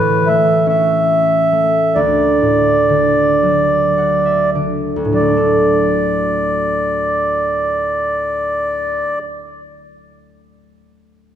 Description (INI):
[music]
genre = celtic folk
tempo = 32-51 BPM (dotted quarters)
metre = 6/8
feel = rubato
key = D major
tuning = A4 = 440 Hz
[part]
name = mellow accordion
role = melody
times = 0.0-9.2 s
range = B4 to E5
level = -15 LUFS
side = right 1 dB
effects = none
[part]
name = concert harp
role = accompaniment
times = 0.0-9.4 s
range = D2 to F#5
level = -17 LUFS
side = equal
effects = none
[sound]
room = wet concert hall reverb, RT60 2.3 s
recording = recorded in a church or concert hall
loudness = -13 LUFS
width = side -9 dB against mid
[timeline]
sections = 0.0-5.2 A section; 5.2-8.8 B section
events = slowing down 0.0-5.2; harp fill 3.4-5.2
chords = 0.0 A; 1.9 D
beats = 0.67 | 1.95 3.42 | 5.15 6.98